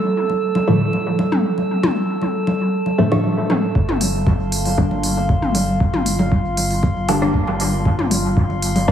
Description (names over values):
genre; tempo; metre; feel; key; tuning
dub techno; 117 BPM; 4/4; straight; G minor; A4 = 439 Hz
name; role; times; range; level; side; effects
drifting glass-harmonics texture; texture; 0.0-8.9 s; F4 to A4; -24 LUFS; right 2 dB; chorus, built-in reverb, sidechain pumping
electronic congas and toms; percussion; 0.3-8.9 s; none; -21 LUFS; left 1 dB; overdrive, sidechain pumping on perc, sidechain pumping on toms, dub echo
filtered dub chord stab; stabs; 0.7-8.9 s; A2 to D4; -22 LUFS; equal; chorus, phaser, sidechain pumping, dub echo
soft dub sub bass; bass; 3.8-8.9 s; G1; -24 LUFS; equal; sidechain pumping
electronic kick drum; drums; 3.8-8.9 s; none; -19 LUFS; equal; none
electronic hi-hat; drums; 4.0-8.9 s; none; -25 LUFS; right 1 dB; low-pass filter on hats, low-pass filter on room
room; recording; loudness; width
moderate lush hall reverb, RT60 2.2 s; heavily compressed radio sound, multiband compression, studio reverb; -16 LUFS; side -9 dB against mid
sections
0.0-3.8 A section; 3.8-8.9 B section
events
filter sweep on synth stab 0.0-3.8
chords
0.0 Dm; 3.8 G5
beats
0.16 0.68 1.19 | 1.70 2.21 2.73 3.24 | 3.75 4.27 4.78 5.29 | 5.80 6.32 6.83 7.34 | 7.86 8.37 8.88